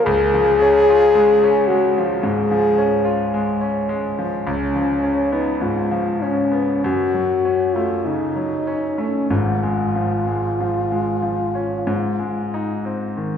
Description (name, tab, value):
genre	classical, romantic duo for French horn and grand piano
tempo	46-55 BPM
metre	4/4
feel	rubato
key	Db major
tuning	A4 = 443 Hz
part	mellow French horn	melody	0.0-13.1 s	Db4 to Ab4	-18 LUFS	left 2 dB	none
part	bright concert grand piano	accompaniment	0.0-13.4 s	Ab1 to F4	-20 LUFS	equal	none
room	wet concert hall reverb, RT60 1.9 s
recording	recorded in a church or concert hall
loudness	-17 LUFS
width	side -8 dB against mid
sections	0.0-13.4 A section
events	none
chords	0.0 Db; 4.5 Db7; 6.8 Gbm; 9.3 Db/Ab; 11.9 Ab